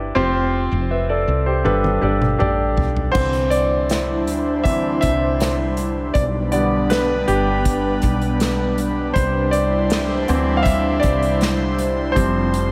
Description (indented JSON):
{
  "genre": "pop ballad",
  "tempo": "80 BPM",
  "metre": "4/4",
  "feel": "straight",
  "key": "C major",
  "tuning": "A4 = 440 Hz",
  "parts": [
    { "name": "bright concert grand piano", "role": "accompaniment", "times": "0.0-12.7 s", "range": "G2 to F5", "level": "-23 LUFS", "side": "equal", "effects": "none" },
    { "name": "woody fretless electric bass", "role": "bass", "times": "0.0-12.7 s", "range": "F1 to D2", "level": "-25 LUFS", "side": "equal", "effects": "ensemble chorus" },
    { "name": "unplugged drum kit", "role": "drums", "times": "1.7-12.7 s", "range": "crash cymbal, hi-hat, kick drum, snare drum, toms", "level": "-26 LUFS", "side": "equal", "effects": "none" },
    { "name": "airy breathy pad", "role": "sustained chords", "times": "3.2-12.7 s", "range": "G3 to C5", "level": "-24 LUFS", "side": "equal", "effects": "chorus" }
  ],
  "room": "moderate plate reverb, RT60 2.6 s",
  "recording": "dreamy mix soaked in reverb",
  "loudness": "-19 LUFS",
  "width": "mono",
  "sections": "0.0-3.2 A section; 3.2-12.7 B section",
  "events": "drum fill 1.7-3.2; grand piano solo 3.2-12.7",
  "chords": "0.2 Fsus2; 1.7 Gadd9; 3.2 Cadd9; 6.2 G; 9.2 Cadd9; 12.2 Fsus2"
}